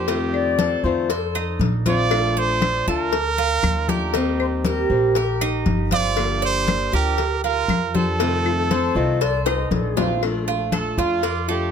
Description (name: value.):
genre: latin, Cuban son and guajira.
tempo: 118 BPM.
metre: 4/4.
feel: straight.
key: Bb major.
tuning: A4 = 435 Hz.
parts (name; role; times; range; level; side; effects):
clear trumpet; melody; 0.0-11.7 s; F4 to D5; -24 LUFS; right 5 dB; none.
picked acoustic archtop guitar; accompaniment; 0.0-11.7 s; C3 to G4; -25 LUFS; left 4 dB; none.
Cuban tres; arpeggios; 0.0-11.7 s; Eb4 to A5; -26 LUFS; right 8 dB; none.
upright bass; bass; 0.0-11.7 s; G1 to F2; -25 LUFS; right 1 dB; none.
congas; percussion; 0.1-11.7 s; none; -25 LUFS; left 4 dB; none.
cowbell and bongos; percussion; 0.1-11.5 s; none; -28 LUFS; left 8 dB; none.
mellow hollow silver concert flute; second line; 0.3-10.2 s; F4 to Eb5; -26 LUFS; left 9 dB; tape echo.
claves; percussion; 0.3-11.0 s; none; -32 LUFS; left 8 dB; none.
room: light reverb.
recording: close, detailed microphones.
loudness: -18 LUFS.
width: side -7 dB against mid.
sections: 0.0-10.2 A section; 10.2-11.7 B section.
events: drum fill 9.5-10.2; trumpet solo 10.2-11.7.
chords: 0.1 F7; 2.1 Bbmaj7; 4.1 Eb6; 6.2 Gm7; 8.2 F7; 10.2 Bbmaj7.